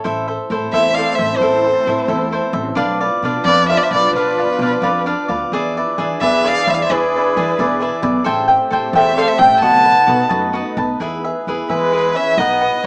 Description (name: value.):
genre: mexican folk, mariachi.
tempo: 88 BPM (dotted quarters).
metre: 6/8.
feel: straight.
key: A minor.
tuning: A4 = 440 Hz.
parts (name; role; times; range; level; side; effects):
cavaquinho; accompaniment; 0.0-12.9 s; D4 to A5; -18 LUFS; equal; none.
analog string pad; sustained chords; 0.5-12.9 s; E3 to G#4; -24 LUFS; equal; ensemble chorus.
upright bass; bass; 0.1-12.9 s; A1 to E3; -24 LUFS; equal; none.
rich violin; melody; 0.7-12.9 s; B4 to A5; -15 LUFS; equal; none.
warm trumpet; second line; 0.7-12.9 s; G#3 to F#5; -22 LUFS; equal; none.
room: moderate studio ambience, RT60 0.5 s.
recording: small speaker sound.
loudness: -13 LUFS.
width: side -40 dB against mid.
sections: 0.0-11.0 A section; 11.0-12.9 B section.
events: none.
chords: 0.0 Am; 2.8 Bdim; 5.5 E7; 8.3 Am7; 9.6 B7; 11.0 E.